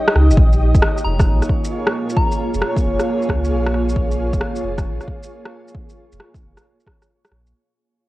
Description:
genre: future garage.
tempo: 134 BPM.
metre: 4/4.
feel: swing 67% on 16ths.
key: Bb minor.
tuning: A4 = 442 Hz.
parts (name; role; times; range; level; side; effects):
granular cloud pad; sustained chords; 0.0-7.5 s; Bb3 to Eb5; -22 LUFS; right 1 dB; built-in reverb, sidechain pumping.
electronic rim click and shaker; drums; 0.1-7.5 s; none; -21 LUFS; equal; overdrive, small room reverb, cassette tape.
warm sub bass; bass; 0.2-7.5 s; Eb1 to Db2; -18 LUFS; equal; transformer saturation, sidechain pumping.
electronic kick drum; drums; 0.4-7.0 s; none; -18 LUFS; equal; overdrive, small room reverb, cassette tape.
soft synth bell; melody; 1.0-2.5 s; Bb5; -28 LUFS; left 1 dB; chorus, phaser, analog delay.
room: light reverb.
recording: home recording on cassette.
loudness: -15 LUFS.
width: side -18 dB against mid.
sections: 0.0-7.5 A section.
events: fade-out 0.4-7.5.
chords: 0.4 Bbm7.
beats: | 0.38 0.83 1.27 1.72 | 2.17 2.62 3.06 3.51 | 3.96 4.41 4.86 5.30 | 5.75 6.20 6.65 7.09.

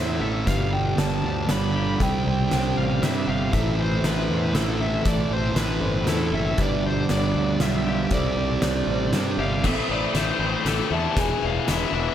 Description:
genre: post-rock.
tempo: 118 BPM.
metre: 3/4.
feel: straight.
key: A minor.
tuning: A4 = 438 Hz.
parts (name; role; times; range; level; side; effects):
bluesy overdriven lead guitar; melody; 0.0-12.1 s; A4 to B5; -29 LUFS; left 1 dB; distortion, tape echo.
rich studio string section; sustained chords; 0.0-12.1 s; D3 to E5; -36 LUFS; left 3 dB; none.
mellow electric guitar; arpeggios; 0.0-12.1 s; G#4 to F5; -35 LUFS; left 1 dB; tape echo.
twangy electric guitar; arpeggios; 0.0-12.1 s; E2 to A4; -33 LUFS; left 6 dB; slapback echo, tape echo.
thick fuzz guitar; riff; 0.0-9.6 s; G2 to C4; -25 LUFS; right 4 dB; distortion.
fuzz fingered electric bass; bass; 0.0-12.1 s; E1 to G2; -28 LUFS; left 1 dB; overdrive.
oversized low-tuned drum kit; drums; 0.5-11.8 s; crash cymbal, hi-hat, kick drum, snare drum; -27 LUFS; equal; none.
distorted electric guitar; riff; 9.6-12.1 s; E2 to A3; -27 LUFS; left 10 dB; overdrive.
room: moderate lush hall reverb, RT60 1.7 s, studio ambience.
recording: big arena sound.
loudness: -20 LUFS.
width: side -10 dB against mid.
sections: 0.0-9.6 A section; 9.6-12.1 B section.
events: build-up 9.6-12.1; drum fill 9.6-12.1.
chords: 0.5 G7; 2.0 Csus2; 3.5 Am; 6.6 G7; 8.1 Csus2; 9.6 Am7; 11.2 E7.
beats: | 0.47 0.98 1.49 | 2.00 2.51 3.02 | 3.53 4.04 4.55 | 5.06 5.57 6.08 | 6.59 7.09 7.60 | 8.11 8.62 9.13 | 9.64 10.15 10.66 | 11.17 11.68.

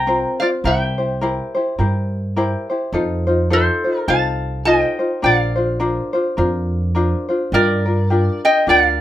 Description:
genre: Hawaiian.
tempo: 105 BPM.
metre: 4/4.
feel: swing 58% on 8ths.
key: Bb major.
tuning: A4 = 440 Hz.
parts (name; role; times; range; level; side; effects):
lap resonator guitar; melody; 0.0-9.0 s; A4 to Bb5; -17 LUFS; right 1 dB; none.
tenor ukulele; accompaniment; 0.0-9.0 s; C4 to C5; -20 LUFS; left 2 dB; none.
upright bass; bass; 0.0-9.0 s; Bb1 to G2; -20 LUFS; right 1 dB; none.
room: moderate studio ambience, RT60 0.5 s.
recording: minimal, uncompressed stereo recording.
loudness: -16 LUFS.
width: side -12 dB against mid.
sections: 0.0-7.5 A section; 7.5-9.0 B section.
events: none.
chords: 0.0 Fsus4; 0.6 C7; 2.9 F7; 5.2 Bbadd9; 7.5 Gm7.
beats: 0.07 | 0.64 1.22 1.79 2.36 | 2.93 3.51 4.08 4.66 | 5.23 5.80 6.38 6.95 | 7.53 8.10 8.67.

